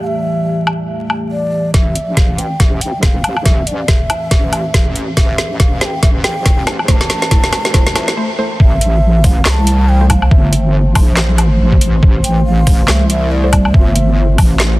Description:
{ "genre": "deep dubstep", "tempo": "140 BPM", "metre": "4/4", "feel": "swing 58% on 16ths, half-time", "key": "A minor", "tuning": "A4 = 444 Hz", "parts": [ { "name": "breathy mellow ney", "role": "melody", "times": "0.0-14.4 s", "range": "D5 to C6", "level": "-22 LUFS", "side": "equal", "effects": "dub echo" }, { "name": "dark analog pad", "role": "sustained chords", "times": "0.0-14.8 s", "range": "E3 to C5", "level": "-22 LUFS", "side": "right 1 dB", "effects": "chorus" }, { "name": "garage drum kit", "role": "drums", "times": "0.7-14.7 s", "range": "handclaps, hi-hat, snare drum, woodblock", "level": "-18 LUFS", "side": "equal", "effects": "soft clipping on snare" }, { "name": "wobble bass", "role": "bass", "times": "1.7-14.8 s", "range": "E1 to C2", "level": "-14 LUFS", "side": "equal", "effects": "chorus, high-pass filter" }, { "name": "electronic kick drum", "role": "drums", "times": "1.7-14.5 s", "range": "none", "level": "-11 LUFS", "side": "equal", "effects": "none" }, { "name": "filtered dub chord stab", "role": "stabs", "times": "2.4-13.5 s", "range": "A3 to C5", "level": "-24 LUFS", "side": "right 1 dB", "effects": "phaser, dub echo" } ], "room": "little or no reverb", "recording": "dense, heavily limited modern master, vinyl crackle", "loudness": "-10 LUFS", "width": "side -19 dB against mid", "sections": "0.0-1.7 A section; 1.7-8.6 B section; 8.6-14.8 C section", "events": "filter sweep on analog synth pad 0.0-1.7; build-up 1.7-8.6; drum fill 1.7-8.2; filter sweep on synth stab 1.7-8.6; break 8.2-8.6; drop 8.6-14.8", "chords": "0.0 A5; 1.7 Am" }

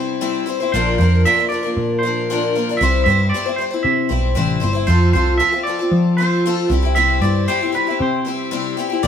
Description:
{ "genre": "folk rock and heartland rock", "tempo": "116 BPM", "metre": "4/4", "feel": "straight", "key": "C major", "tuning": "A4 = 440 Hz", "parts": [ { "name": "twangy electric guitar", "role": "melody", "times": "0.0-9.1 s", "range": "B4 to E5", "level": "-20 LUFS", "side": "right 3 dB", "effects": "none" }, { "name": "picked twelve-string acoustic guitar", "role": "accompaniment", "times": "0.0-9.1 s", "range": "Bb2 to C5", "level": "-20 LUFS", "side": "left 3 dB", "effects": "none" }, { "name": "hollow-body short-scale picked electric bass", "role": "bass", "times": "0.0-9.1 s", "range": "G1 to F3", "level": "-18 LUFS", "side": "equal", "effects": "none" } ], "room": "moderate stone room reverb, RT60 1.0 s", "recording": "band playing live in one room", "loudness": "-15 LUFS", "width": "side -8 dB against mid", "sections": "0.0-9.1 A section", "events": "none", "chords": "0.0 C; 0.7 Bb; 2.8 C; 4.9 F; 6.7 C" }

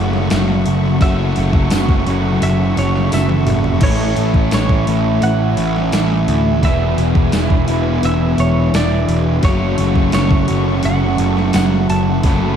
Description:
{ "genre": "rock, shoegaze and dream pop", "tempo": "86 BPM", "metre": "4/4", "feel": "straight", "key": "unclear", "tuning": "A4 = 440 Hz", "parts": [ { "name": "semi-hollow electric guitar", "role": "melody", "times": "0.0-12.6 s", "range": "C#5 to A5", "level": "-25 LUFS", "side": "right 2 dB", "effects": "analog chorus, analog delay" }, { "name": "dark symphonic string section", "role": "sustained chords", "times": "0.0-12.6 s", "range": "A4 to C#6", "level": "-28 LUFS", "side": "left 1 dB", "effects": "none" }, { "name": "crunchy overdriven guitar", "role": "riff", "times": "0.0-12.6 s", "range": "A2 to G#4", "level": "-22 LUFS", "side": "equal", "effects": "none" }, { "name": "overdriven electric guitar", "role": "riff", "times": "0.0-12.6 s", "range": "E2 to F#4", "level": "-21 LUFS", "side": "right 13 dB", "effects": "reverse reverb" }, { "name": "thick fuzz guitar", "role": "riff", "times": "0.0-12.6 s", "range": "E2 to A3", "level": "-21 LUFS", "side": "left 10 dB", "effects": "distortion, wide subtle chorus" }, { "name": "fuzz picked electric bass", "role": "bass", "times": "0.0-12.6 s", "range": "E1 to D2", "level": "-18 LUFS", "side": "equal", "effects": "overdrive" }, { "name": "gated 80s digital drum machine", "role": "drums", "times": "0.1-12.4 s", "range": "crash cymbal, hi-hat, kick drum, snare drum, toms", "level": "-18 LUFS", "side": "equal", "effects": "gated reverb, gated reverb snare, overdrive" }, { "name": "tambourine", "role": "percussion", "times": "0.3-11.7 s", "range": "none", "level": "-34 LUFS", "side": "left 9 dB", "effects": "none" } ], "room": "little or no reverb", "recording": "dark, warm production", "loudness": "-13 LUFS", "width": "side -8 dB against mid", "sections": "0.0-12.6 A section", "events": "drum fill 3.1-3.8", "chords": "0.0 F#m7; 3.8 Amaj7; 6.6 E7; 9.4 F#m7" }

